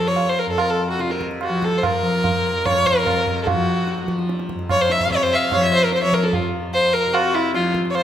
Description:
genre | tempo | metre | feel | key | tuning
indian classical, Hindustani | 147 BPM | 4/4 | straight | unclear | A4 = 442 Hz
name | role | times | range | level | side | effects
rich violin | melody | 0.0-8.0 s | E4 to F5 | -19 LUFS | equal | none
tanpura | drone | 0.0-8.0 s | F2 to F3 | -24 LUFS | left 1 dB | none
tabla | percussion | 0.2-8.0 s | none | -25 LUFS | right 2 dB | none
room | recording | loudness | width
wet recital hall reverb, RT60 1.4 s | none | -17 LUFS | side -10 dB against mid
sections
0.0-8.0 A section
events
speeding up 0.0-8.0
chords
none

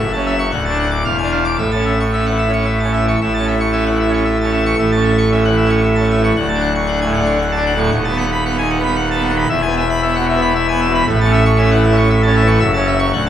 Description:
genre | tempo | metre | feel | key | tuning
classical, organ toccata | 114 BPM | 3/4 | straight | A major | A4 = 440 Hz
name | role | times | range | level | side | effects
pipe organ, full organ | solo | 0.0-13.3 s | D1 to D6 | -13 LUFS | equal | none
room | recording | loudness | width
wet stone room reverb, RT60 1.2 s | none | -13 LUFS | side -10 dB against mid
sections
0.0-3.2 A section; 3.2-13.3 B section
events
none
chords
0.0 F#m7; 0.5 D; 1.1 E7b9; 1.6 A; 6.4 Dmaj7; 7.9 B7/D#; 9.5 E; 11.1 A; 12.6 F#m7

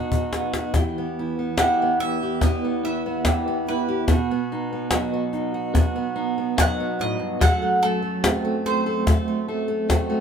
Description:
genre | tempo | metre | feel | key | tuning
acoustic folk duo or small band | 72 BPM | 4/4 | straight | E harmonic minor | A4 = 435 Hz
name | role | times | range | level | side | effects
fingerpicked steel-string acoustic guitar | accompaniment | 0.0-10.2 s | E2 to A4 | -27 LUFS | left 1 dB | none
electric guitar through a small old amp | arpeggios | 0.0-10.2 s | E3 to G4 | -26 LUFS | right 4 dB | tremolo
cajon | percussion | 0.1-10.1 s | none | -20 LUFS | left 2 dB | none
bowl-back mandolin | second line | 1.6-9.4 s | A4 to F#5 | -25 LUFS | right 2 dB | none
room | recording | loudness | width
light reverb | minimal, uncompressed stereo recording | -20 LUFS | side -7 dB against mid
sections
0.7-10.2 A section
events
drum fill 0.0-0.7; mandolin solo 0.7-10.2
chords
0.0 B; 0.7 Em; 4.1 B; 7.4 F#dim

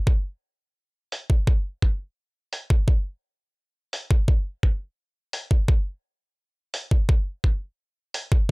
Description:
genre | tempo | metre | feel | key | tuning
drum and bass | 171 BPM | 4/4 | straight | none | none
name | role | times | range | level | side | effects
electronic kick drum | drums | 0.1-8.4 s | none | -19 LUFS | equal | none
electronic hi-hat | drums | 1.1-8.2 s | none | -30 LUFS | equal | low-pass filter on hats
room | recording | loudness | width
digital ambience | none | -21 LUFS | side -30 dB against mid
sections
0.0-8.5 A section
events
none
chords
none

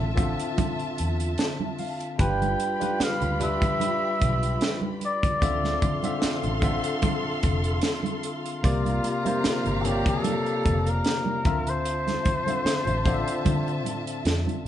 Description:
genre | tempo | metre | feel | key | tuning
lush 1970s-style soul | 75 BPM | 4/4 | swing 54% on 16ths | D minor | A4 = 440 Hz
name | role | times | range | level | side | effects
warm studio string section | second line | 0.0-14.7 s | F4 to C6 | -34 LUFS | left 1 dB | none
barky tine electric piano | accompaniment | 0.0-14.7 s | C3 to A5 | -30 LUFS | left 2 dB | medium stereo tremolo
vintage muted fingered electric bass | bass | 0.0-14.7 s | F1 to D3 | -28 LUFS | equal | none
tight funk drum kit | drums | 0.2-14.7 s | hi-hat, kick drum, snare drum | -27 LUFS | equal | none
congas | percussion | 0.2-14.6 s | none | -33 LUFS | right 4 dB | none
breathy flugelhorn | melody | 2.2-14.3 s | F4 to G5 | -28 LUFS | left 1 dB | none
room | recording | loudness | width
moderate large studio reverb, RT60 0.9 s | band playing live in one room, nothing above 10.6 kHz | -23 LUFS | side -11 dB against mid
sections
0.0-14.7 A section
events
tine electric piano fill 1.0-2.2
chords
0.0 Dm9; 2.2 G7; 5.4 Dm9; 8.6 C9sus4; 11.4 Dm9

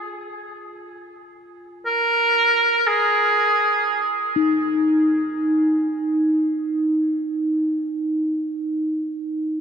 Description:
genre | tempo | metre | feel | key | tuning
world meditative, free-time meditation music | free time | none | none | unclear | A4 = 441 Hz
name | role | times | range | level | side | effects
bronze singing bowl | texture | 0.0-8.3 s | Eb4 to F4 | -20 LUFS | equal | none
clear oboe | melody | 1.9-4.1 s | Ab4 to Bb4 | -19 LUFS | right 1 dB | tape echo
room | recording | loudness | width
wet cathedral reverb, RT60 6.3 s | in a vast, echoing space | -18 LUFS | side -7 dB against mid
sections
0.0-4.3 A section; 4.3-9.0 B section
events
none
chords
none

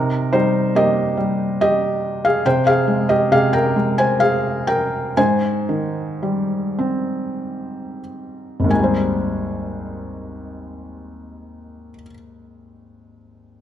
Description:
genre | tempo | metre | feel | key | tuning
classical, lyrical solo piano | 43-72 BPM | 3/4 | rubato | Ab major | A4 = 439 Hz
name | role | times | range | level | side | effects
felt-muted upright piano | solo | 0.0-13.6 s | Ab1 to Ab5 | -17 LUFS | equal | none
room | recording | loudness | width
moderate scoring stage reverb, RT60 2.0 s | none | -16 LUFS | side -10 dB against mid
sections
0.0-8.7 A section; 8.7-12.7 B section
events
slowing down 2.5-8.7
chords
0.0 Cm7; 5.2 Abmaj7

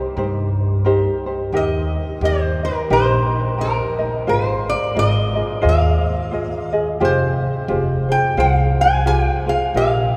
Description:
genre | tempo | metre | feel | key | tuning
Hawaiian | 88 BPM | 4/4 | swing 60% on 8ths | Eb major | A4 = 444 Hz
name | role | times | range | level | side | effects
lap resonator guitar | melody | 0.0-10.2 s | Bb4 to Ab5 | -23 LUFS | equal | none
ukulele | accompaniment | 0.0-10.2 s | Eb4 to Eb5 | -24 LUFS | equal | none
upright bass | bass | 0.2-10.2 s | F1 to G2 | -22 LUFS | equal | none
room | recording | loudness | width
wet cathedral reverb, RT60 6.5 s | recorded in a church or concert hall | -18 LUFS | mono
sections
0.0-1.5 A section; 1.5-10.2 B section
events
none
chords
0.0 Cm7; 1.5 Eb; 4.3 Ab6; 7.0 Fmadd9

